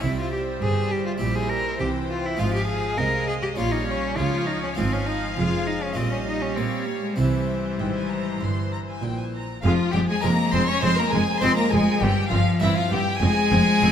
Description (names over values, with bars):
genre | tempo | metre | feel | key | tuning
classical, baroque-style concerto movement with solo episodes | 100 BPM | 4/4 | straight | F minor | A4 = 440 Hz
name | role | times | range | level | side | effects
rich cello | melody | 0.0-13.9 s | E3 to Bb4 | -26 LUFS | left 2 dB | none
rich chamber violin section | melody | 0.0-13.9 s | E5 to Db6 | -30 LUFS | left 3 dB | none
rich chamber violin section | second line | 0.0-13.9 s | E4 to F5 | -30 LUFS | left 2 dB | none
harpsichord | accompaniment | 0.0-13.9 s | F2 to F4 | -31 LUFS | left 1 dB | none
rich chamber viola section | accompaniment | 0.0-13.9 s | E3 to C4 | -32 LUFS | right 3 dB | none
rich symphonic double bass section | bass | 0.0-13.9 s | F1 to Bb2 | -28 LUFS | right 3 dB | none
warm studio cello section | bass | 0.0-13.9 s | F2 to Bb3 | -28 LUFS | right 2 dB | none
room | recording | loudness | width
moderate scoring stage reverb, RT60 2.0 s | none | -21 LUFS | side -8 dB against mid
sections
0.0-9.6 A section; 9.6-13.9 B section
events
none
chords
0.0 C; 1.2 C7/Bb; 2.4 Fm/Ab; 3.6 Bbm; 4.8 Fm/Ab; 6.0 Gm7b5/Bb; 7.2 C; 9.6 Fm; 12.0 C/G; 13.2 Fm